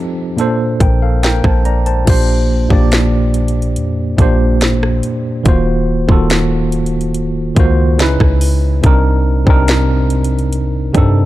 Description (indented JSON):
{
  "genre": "contemporary R&B",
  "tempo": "71 BPM",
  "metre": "4/4",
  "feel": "straight",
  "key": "Bb major",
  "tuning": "A4 = 440 Hz",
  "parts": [
    { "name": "tine electric piano", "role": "accompaniment", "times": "0.0-11.3 s", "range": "Bb2 to Bb5", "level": "-15 LUFS", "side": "right 1 dB", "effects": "overdrive, fast stereo tremolo" },
    { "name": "trap drum kit", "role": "drums", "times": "0.4-11.1 s", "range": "crash cymbal, hi-hat, kick drum, rim click, snare drum", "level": "-14 LUFS", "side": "equal", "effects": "none" },
    { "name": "warm 808-style bass", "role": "bass", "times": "0.8-11.3 s", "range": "Eb1 to G2", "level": "-15 LUFS", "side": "equal", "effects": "none" }
  ],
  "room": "digital ambience",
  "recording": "dark, warm production",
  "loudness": "-11 LUFS",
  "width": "side -15 dB against mid",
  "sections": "0.0-2.1 A section; 2.1-11.3 A section",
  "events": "none",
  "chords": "0.4 Bbmaj7; 2.1 Bb69; 5.5 Ebm6; 8.0 Dbm9; 8.8 Cm9"
}